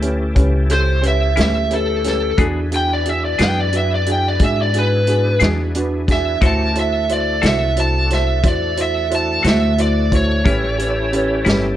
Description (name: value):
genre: slow blues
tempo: 60 BPM (dotted quarters)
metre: 12/8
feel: straight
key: A mixolydian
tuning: A4 = 440 Hz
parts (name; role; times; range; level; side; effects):
- warm upright piano; accompaniment; 0.0-11.7 s; C#4 to C5; -23 LUFS; right 2 dB; none
- overdriven tonewheel organ; sustained chords; 0.0-11.8 s; A3 to Bb4; -29 LUFS; left 1 dB; chorus vibrato, slow rotary speaker
- upright bass; bass; 0.0-11.8 s; G1 to G#2; -19 LUFS; left 1 dB; none
- vintage drum kit; drums; 0.0-11.6 s; hi-hat, kick drum, snare drum; -20 LUFS; equal; none
- lead guitar through a small cranked amp; melody; 0.7-11.4 s; A4 to A5; -19 LUFS; right 1 dB; overdrive
- semi-hollow electric guitar; accompaniment; 1.4-11.7 s; A2 to A4; -22 LUFS; left 4 dB; tremolo
room: little or no reverb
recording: worn, warbling old tape, cassette tape, warbly pitch drift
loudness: -14 LUFS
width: side -12 dB against mid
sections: 0.0-11.8 A section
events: lead electric guitar solo 0.0-11.8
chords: 0.0 A7; 2.4 E7; 6.4 D7; 10.5 A7